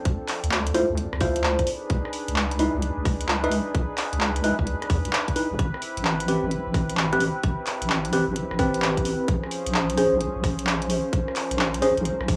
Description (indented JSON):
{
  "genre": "UK garage, two-step garage",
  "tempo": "130 BPM",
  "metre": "4/4",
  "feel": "swing 66% on 16ths",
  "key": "unclear",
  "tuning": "A4 = 438 Hz",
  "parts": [
    { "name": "warm analog pad", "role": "sustained chords", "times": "0.0-12.4 s", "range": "F3 to C5", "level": "-34 LUFS", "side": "equal", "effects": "chorus, sidechain pumping" },
    { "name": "deep soft wobble bass", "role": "bass", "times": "0.1-12.4 s", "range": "G#1 to E2", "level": "-29 LUFS", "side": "equal", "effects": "chorus" },
    { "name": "electronic kick drum", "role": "drums", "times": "0.1-12.4 s", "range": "none", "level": "-28 LUFS", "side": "equal", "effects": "none" },
    { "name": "punchy analog drum machine", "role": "drums", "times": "0.1-12.4 s", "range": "handclaps, hi-hat, rim click", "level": "-30 LUFS", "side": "equal", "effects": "none" },
    { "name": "tine electric piano", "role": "stabs", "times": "0.7-11.9 s", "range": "C4 to C5", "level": "-27 LUFS", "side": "equal", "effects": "phaser, analog delay" }
  ],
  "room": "light reverb, digital ambience",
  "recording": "dry, gritty hardware recording, cassette tape, small room ambience",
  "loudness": "-24 LUFS",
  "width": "mono",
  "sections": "0.0-12.4 A section",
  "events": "none",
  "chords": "0.0 Dm7; 1.7 C#m7; 5.6 Am7; 9.3 Bbm7"
}